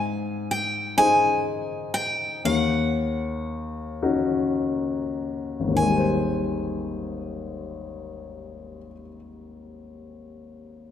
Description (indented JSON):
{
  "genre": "folk",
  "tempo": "32-43 BPM (dotted quarters)",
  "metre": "6/8",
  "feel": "straight",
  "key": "Ab major",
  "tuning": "A4 = 440 Hz",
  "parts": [
    { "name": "picked steel-string acoustic guitar", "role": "melody", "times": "0.0-8.9 s", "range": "Gb5 to Ab5", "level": "-24 LUFS", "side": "equal", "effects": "none" },
    { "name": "warm grand piano", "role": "accompaniment", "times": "0.0-10.9 s", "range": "Ab1 to C5", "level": "-26 LUFS", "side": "left 3 dB", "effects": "none" }
  ],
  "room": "wet concert hall reverb, RT60 1.9 s",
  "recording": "recorded in a church or concert hall",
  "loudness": "-22 LUFS",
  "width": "side -10 dB against mid",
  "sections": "0.0-5.8 A section; 5.8-9.5 B section",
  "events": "slowing down 0.0-5.8",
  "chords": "0.0 Ab; 2.4 Ebm7; 5.8 Abmaj7"
}